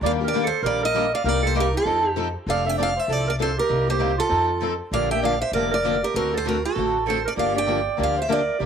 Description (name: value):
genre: acoustic string swing (jazz manouche)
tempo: 196 BPM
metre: 4/4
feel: swing 58% on 8ths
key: F major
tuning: A4 = 441 Hz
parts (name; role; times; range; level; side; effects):
- breathy clarinet; second line; 0.0-8.7 s; F4 to E5; -26 LUFS; right 10 dB; none
- picked steel-string acoustic guitar; accompaniment; 0.0-8.7 s; C3 to A4; -27 LUFS; left 11 dB; none
- picked steel-string acoustic guitar; accompaniment; 0.0-8.7 s; C3 to A4; -33 LUFS; right 11 dB; none
- upright bass; bass; 0.0-8.7 s; F1 to F2; -28 LUFS; equal; none
- picked steel-string acoustic guitar; melody; 0.1-8.6 s; A4 to G5; -24 LUFS; equal; none
room: moderate spring reverb, RT60 1.7 s, studio reverb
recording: 1960s-style stereo with parts hard left and right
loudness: -20 LUFS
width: side -7 dB against mid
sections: 0.0-2.5 A section; 2.5-8.7 B section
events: none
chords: 0.0 Ebmaj7; 1.2 Cm7; 1.9 F7; 2.5 F6; 3.7 Cm7; 4.3 F7; 4.9 Bb6; 6.2 D7; 7.4 Gm7